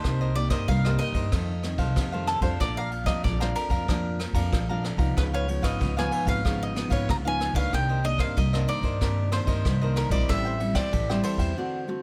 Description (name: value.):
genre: samba and choro.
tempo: 94 BPM.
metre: 4/4.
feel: straight.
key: unclear.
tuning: A4 = 441 Hz.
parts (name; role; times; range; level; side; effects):
mandolin; melody; 0.0-12.0 s; A4 to Bb5; -33 LUFS; equal; none.
cavaquinho; accompaniment; 0.0-11.9 s; D4 to Bb5; -37 LUFS; equal; none.
nylon-string guitar; accompaniment; 0.0-12.0 s; F2 to G4; -34 LUFS; equal; none.
upright bass; bass; 0.0-11.5 s; G#1 to G2; -30 LUFS; equal; none.
jazz brush drum kit; drums; 0.0-11.5 s; kick drum, ride cymbal, rim click; -31 LUFS; equal; none.
room: little or no reverb.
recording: none.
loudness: -26 LUFS.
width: mono.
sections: 0.0-12.0 A section.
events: break 11.6-12.0.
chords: 0.0 Cm7; 1.3 F7; 2.6 Bbmaj7; 5.2 C#9; 7.7 Cm9; 10.3 Am7.